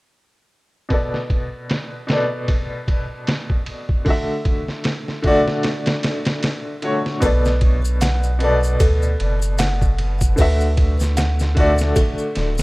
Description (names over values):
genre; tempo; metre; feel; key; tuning
trip hop; 76 BPM; 4/4; swing 57% on 16ths; B minor; A4 = 440 Hz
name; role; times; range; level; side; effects
bright upright piano; accompaniment; 0.9-12.6 s; B2 to E5; -22 LUFS; left 1 dB; tremolo, low-pass filter, tape echo
trip hop sampler-style drum kit; drums; 0.9-12.6 s; hi-hat, kick drum, ride cymbal, snare drum; -21 LUFS; equal; low-pass filter on cymbals, small room ambience, low-pass filter on kick, low-pass filter on snare, low-pass filter on hats
music box; arpeggios; 7.2-12.6 s; A4 to F#5; -28 LUFS; equal; digital delay
soft dub sub bass; bass; 7.2-12.6 s; D1 to D2; -18 LUFS; equal; none
maracas; percussion; 7.2-12.6 s; none; -34 LUFS; left 2 dB; none
room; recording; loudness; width
little or no reverb; rough home demo mix; -17 LUFS; side -22 dB against mid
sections
0.9-7.2 A section; 7.2-12.6 B section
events
none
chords
0.9 Bm7; 4.1 D; 7.2 Bm7; 10.4 D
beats
| 0.91 1.70 2.49 3.28 | 4.07 4.86 5.65 6.44 | 7.23 8.02 8.80 9.60 | 10.38 11.17 11.96